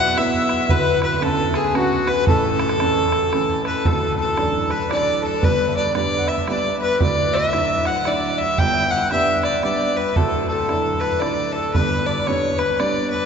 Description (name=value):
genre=celtic folk, Celtic waltz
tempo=114 BPM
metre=3/4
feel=swing 61% on 8ths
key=A major, D major from 3.9 s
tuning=A4 = 440 Hz
part: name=rich fiddle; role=melody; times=0.0-13.3 s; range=F#4 to G5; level=-21 LUFS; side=equal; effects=none
part: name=accordion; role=second line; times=0.0-13.3 s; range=F#4 to G5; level=-24 LUFS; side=left 2 dB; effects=none
part: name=warm upright piano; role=accompaniment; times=0.0-13.3 s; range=D1 to E4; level=-24 LUFS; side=right 2 dB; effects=none
part: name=bodhran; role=percussion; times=0.2-12.9 s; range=none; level=-25 LUFS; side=right 2 dB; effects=none
room=wet cathedral reverb, RT60 6.0 s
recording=recorded in a church or concert hall, nothing above 7.8 kHz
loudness=-17 LUFS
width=side -6 dB against mid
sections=0.0-3.9 A section; 3.9-13.3 B section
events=none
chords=0.0 Esus2; 0.7 Bmadd9/D; 2.3 A; 3.9 Dadd9; 5.4 G; 7.0 Dadd9; 8.6 G; 10.2 Dadd9; 11.7 G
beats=0.17 | 0.70 1.22 1.75 | 2.27 2.80 3.33 | 3.85 4.38 4.90 | 5.43 5.95 6.48 | 7.01 7.53 8.06 | 8.58 9.11 9.63 | 10.16 10.69 11.21 | 11.74 12.27 12.79